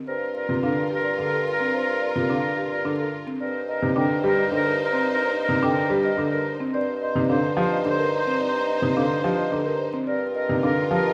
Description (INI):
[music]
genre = classical, minimalist pattern music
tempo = 108 BPM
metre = 3/4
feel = straight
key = G minor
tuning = A4 = 440 Hz
[part]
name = marimba with soft mallets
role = melody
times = 0.1-11.1 s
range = G4 to G5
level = -32 LUFS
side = equal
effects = none
[part]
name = warm oboe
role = second line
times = 0.1-11.1 s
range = Bb4 to C5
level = -30 LUFS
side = equal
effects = none
[part]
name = rich studio string section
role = sustained chords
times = 0.1-11.1 s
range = Eb4 to C5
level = -34 LUFS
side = equal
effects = none
[part]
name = mellow bassoon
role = bass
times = 0.1-11.1 s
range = G2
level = -30 LUFS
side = equal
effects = none
[part]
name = clear grand piano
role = accompaniment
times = 0.5-11.1 s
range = C3 to G3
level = -29 LUFS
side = equal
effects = none
[part]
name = buzzing marimba with medium mallets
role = arpeggios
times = 0.5-10.8 s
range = C4 to F4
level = -32 LUFS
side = equal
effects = none
[sound]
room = moderate recital hall reverb, RT60 1.7 s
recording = vinyl crackle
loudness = -23 LUFS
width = mono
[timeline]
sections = 0.1-11.1 A section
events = none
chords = 0.1 Gm7; 3.4 Cm7/G; 6.7 Eb69/G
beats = | 0.07 0.63 1.19 | 1.74 2.30 2.85 | 3.41 3.96 4.52 | 5.08 5.63 6.19 | 6.74 7.30 7.85 | 8.41 8.96 9.52 | 10.07 10.63